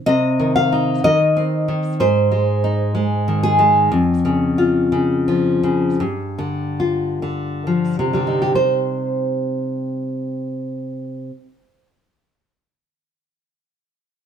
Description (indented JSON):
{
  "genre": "romantic piece for solo classical guitar",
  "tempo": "42-63 BPM",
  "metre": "4/4",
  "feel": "rubato",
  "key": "C minor",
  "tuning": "A4 = 440 Hz",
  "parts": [
    { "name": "nylon-string guitar", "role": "solo", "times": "0.1-11.9 s", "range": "F2 to F5", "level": "-16 LUFS", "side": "equal", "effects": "none" }
  ],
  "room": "moderate studio reverb, RT60 0.8 s",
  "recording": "band playing live in one room",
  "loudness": "-16 LUFS",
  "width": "side -8 dB against mid",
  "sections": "0.1-8.6 A section; 8.6-13.3 B section",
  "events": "slowing down 0.0-8.6",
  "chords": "0.1 Cm; 2.0 Ab; 3.9 Db/F; 6.0 G5; 8.6 Cm"
}